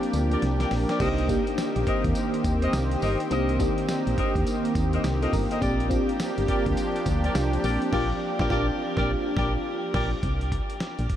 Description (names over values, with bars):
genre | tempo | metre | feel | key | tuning
R&B, new jack swing | 104 BPM | 4/4 | swing 62% on 16ths | unclear | A4 = 440 Hz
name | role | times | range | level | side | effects
FM electric piano with soft pad layer | accompaniment | 0.0-10.3 s | Bb3 to Bb4 | -29 LUFS | equal | chorus, phaser
lush unison pad | sustained chords | 0.0-10.2 s | Eb3 to G4 | -30 LUFS | equal | chorus
dusty soul sampler-style drum kit | drums | 0.0-11.2 s | crash cymbal, hi-hat, kick drum, snare drum, tambourine | -30 LUFS | equal | none
solid FM bass | bass | 0.1-11.1 s | G1 to Eb2 | -27 LUFS | equal | none
dark horn section | stabs | 0.3-10.1 s | G4 to Eb5 | -32 LUFS | left 1 dB | diffuse ambient delay
room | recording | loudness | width
moderate huge ambient reverb, RT60 7.8 s | dreamy mix soaked in reverb | -23 LUFS | side -11 dB against mid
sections
0.0-10.2 A section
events
drum fill 0.4-1.0; band accent 7.9-10.2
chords
0.0 Bb6; 1.0 Cm7; 5.6 Bb6; 10.2 N.C.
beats
0.42 | 1.00 1.58 2.16 2.73 | 3.31 3.89 4.46 5.04 | 5.62 6.20 6.77 7.35 | 7.92 8.50 9.08 9.66 | 10.23 10.81